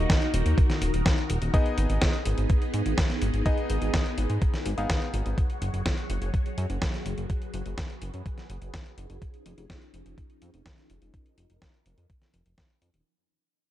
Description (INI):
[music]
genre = italo disco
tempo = 125 BPM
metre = 4/4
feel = straight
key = unclear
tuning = A4 = 440 Hz
[part]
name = phased string machine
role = sustained chords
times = 0.0-13.0 s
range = Eb3 to Db5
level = -34 LUFS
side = equal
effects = ensemble chorus, phaser
[part]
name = bright electric grand piano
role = stabs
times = 0.0-5.3 s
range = Bb3 to F5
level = -34 LUFS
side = left 2 dB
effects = digital delay
[part]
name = chorused synth bass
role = bass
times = 0.0-13.0 s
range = Eb1 to Ab2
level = -28 LUFS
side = equal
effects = none
[part]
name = dusty soul sampler-style drum kit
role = drums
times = 0.1-13.0 s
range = hi-hat, snare drum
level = -32 LUFS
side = equal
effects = studio reverb
[part]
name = electronic kick drum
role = drums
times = 0.1-12.7 s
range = none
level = -26 LUFS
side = equal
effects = studio reverb
[sound]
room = light reverb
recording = dark, warm production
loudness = -24 LUFS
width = side -13 dB against mid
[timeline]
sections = 0.0-13.1 A section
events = fade-out 0.0-13.1; filter sweep on string machine 0.0-13.1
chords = 0.0 Ebm; 1.5 Abm; 5.4 Gbsus2; 9.2 Dbadd9/F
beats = 0.10 0.58 1.06 | 1.54 2.02 2.50 2.98 | 3.46 3.94 4.42 4.90 | 5.38 5.86 6.34 6.82 | 7.30 7.78 8.26 8.74 | 9.22 9.70 10.18 10.66 | 11.14 11.62 12.10 12.58